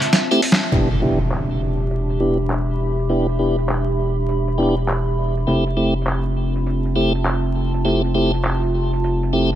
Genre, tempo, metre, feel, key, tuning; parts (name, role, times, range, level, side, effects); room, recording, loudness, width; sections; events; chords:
glitch hop; 101 BPM; 4/4; swing 64% on 16ths; E phrygian; A4 = 440 Hz
boom bap sampler-style drum kit; drums; 0.0-9.6 s; handclaps, hi-hat, snare drum; -20 LUFS; equal; overdrive, low-pass filter on hats, low-pass filter on snare
warbly tape-like pad; texture; 0.0-9.6 s; C4 to B5; -24 LUFS; right 2 dB; chorus, built-in reverb
tonewheel organ; stabs; 0.3-9.5 s; A3 to G4; -21 LUFS; equal; slow rotary speaker, low-pass filter, dub echo
gritty driven synth bass; bass; 0.7-9.6 s; E1 to F1; -21 LUFS; equal; tube saturation
impact; sound effects; 0.7-3.1 s; -24 LUFS; equal
light reverb; vinyl crackle; -17 LUFS; side -11 dB against mid
0.7-9.6 A section
break 0.0-0.7; drum fill 0.0-0.7; band accent 0.5; impact 0.7-3.1; filter sweep on tonewheel organ 0.7-9.6
0.0 Fmaj7; 0.7 Em7; 5.5 Fmaj7